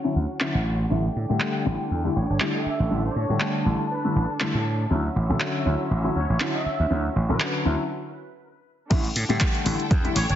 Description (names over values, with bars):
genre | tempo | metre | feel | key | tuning
filtered disco house | 120 BPM | 4/4 | swing 55% on 16ths | A mixolydian | A4 = 440 Hz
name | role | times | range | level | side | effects
warm baby grand piano | accompaniment | 0.0-10.1 s | D3 to A4 | -27 LUFS | left 2 dB | phaser, vintage 12-bit sampler grit, sidechain pumping, low-pass filter
rich studio string section | sustained chords | 0.0-10.4 s | C#4 to A5 | -33 LUFS | right 1 dB | sidechain pumping, low-pass filter
gritty slap bass | bass | 0.2-10.4 s | G1 to A2 | -24 LUFS | equal | overdrive, sidechain pumping, low-pass filter
punchy analog drum machine | drums | 0.4-10.4 s | crash cymbal, handclaps, hi-hat | -29 LUFS | equal | overdrive, low-pass filter on snare, sidechain pumping on hats, low-pass filter on hats, sidechain pumping on cymbals, low-pass filter on cymbals
clear trumpet section | melody | 2.2-10.4 s | B4 to E5 | -32 LUFS | equal | sidechain pumping, low-pass filter, ping-pong delay
electronic kick drum | drums | 8.9-10.0 s | none | -21 LUFS | equal | overdrive
room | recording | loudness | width
moderate digital room reverb, RT60 1.1 s, small room reverb | heavily compressed radio sound, multiband compression, nothing above 7.7 kHz | -22 LUFS | side -11 dB against mid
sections
0.0-8.9 A section; 8.9-10.4 B section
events
filter sweep 0.0-8.9; break 7.9-8.9; drop 8.9-10.4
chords
0.0 Dmaj9; 0.9 A7sus4; 4.9 Dmaj9; 8.9 A7sus4